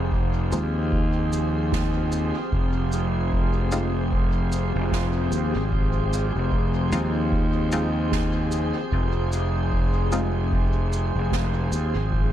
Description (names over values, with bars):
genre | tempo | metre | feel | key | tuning
ambient dub | 75 BPM | 4/4 | swing 59% on 16ths | F minor | A4 = 439 Hz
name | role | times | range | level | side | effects
soft additive organ-like pad | sustained chords | 0.0-12.3 s | F3 to Ab4 | -29 LUFS | left 1 dB | ensemble chorus, built-in reverb
fuzz fingered electric bass | bass | 0.0-12.3 s | F1 to Eb2 | -24 LUFS | equal | overdrive
drifting glass-harmonics texture | texture | 0.0-12.3 s | F4 to F5 | -35 LUFS | right 6 dB | chorus, built-in reverb
electronic kick drum | drums | 0.1-12.3 s | none | -27 LUFS | equal | overdrive
filtered dub chord stab | stabs | 0.5-10.3 s | Ab3 to F4 | -32 LUFS | left 1 dB | chorus, dub echo
shaker and snare drum | drums | 0.5-11.9 s | none | -36 LUFS | right 5 dB | dub echo
room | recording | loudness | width
studio reverb | none | -21 LUFS | side -11 dB against mid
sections
0.0-12.3 A section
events
none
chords
0.0 Fm7